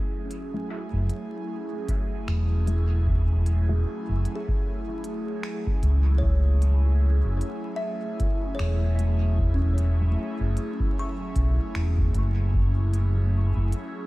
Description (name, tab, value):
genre	ambient dub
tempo	76 BPM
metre	4/4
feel	swing 59% on 16ths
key	F# minor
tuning	A4 = 440 Hz
part	airy breathy pad	sustained chords	0.0-14.1 s	F#3 to G#4	-33 LUFS	equal	chorus, phaser
part	organic electronic drum kit	drums	0.3-13.9 s	finger snaps, hi-hat	-43 LUFS	equal	dub echo
part	filtered dub chord stab	stabs	0.5-13.3 s	A3 to E5	-39 LUFS	equal	phaser, dub echo
part	fingered electric bass	bass	0.9-13.7 s	E1 to C#2	-21 LUFS	equal	none
part	electronic kick drum	drums	1.9-12.7 s	none	-28 LUFS	equal	none
part	kalimba	arpeggios	4.4-13.2 s	A3 to C#6	-38 LUFS	left 2 dB	dub echo
room	little or no reverb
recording	vinyl crackle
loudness	-22 LUFS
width	side -19 dB against mid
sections	0.0-14.1 A section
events	filter sweep on synth stab 0.0-14.1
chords	0.0 F#m9